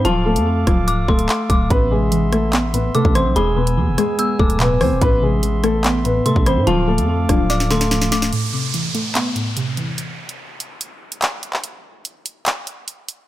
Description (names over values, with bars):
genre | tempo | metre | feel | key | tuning
hip hop, drill | 145 BPM | 4/4 | half-time | A harmonic minor | A4 = 440 Hz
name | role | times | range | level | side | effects
dark concert grand piano | melody | 0.0-8.3 s | F3 to C5 | -20 LUFS | left 1 dB | digital delay
dark detuned synth bell | second line | 0.0-8.3 s | A5 to E6 | -26 LUFS | left 3 dB | chorus, digital delay
mellow accordion | sustained chords | 0.0-8.3 s | B3 to E6 | -28 LUFS | right 2 dB | none
growling 808-style bass | bass | 0.0-8.3 s | C1 to A2 | -20 LUFS | equal | none
drill drum kit | drums | 0.1-13.2 s | handclaps, hi-hat, kick drum, rim click, snare drum | -20 LUFS | equal | none
warbly dusty pluck | accompaniment | 1.7-10.0 s | E2 to D5 | -22 LUFS | equal | chorus
downlifter | sound effects | 8.3-11.6 s | none | -28 LUFS | right 2 dB | none
room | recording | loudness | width
digital ambience | none | -15 LUFS | side -14 dB against mid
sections
0.0-8.3 A section; 8.3-13.3 B section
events
drum fill 7.5-8.3; break 8.3-13.3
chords
0.1 Dm; 1.7 Amadd9; 3.4 E; 5.0 Amadd9; 6.7 Dm; 8.3 Amadd9; 10.0 N.C.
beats
| 0.05 0.46 0.88 1.29 | 1.71 2.12 2.53 2.95 | 3.36 3.77 4.19 4.60 | 5.01 5.43 5.84 6.26 | 6.67 7.08 7.50 7.91 | 8.33 8.74 9.15 9.57 | 9.98 10.39 10.81 11.22 | 11.64 12.05 12.46 12.88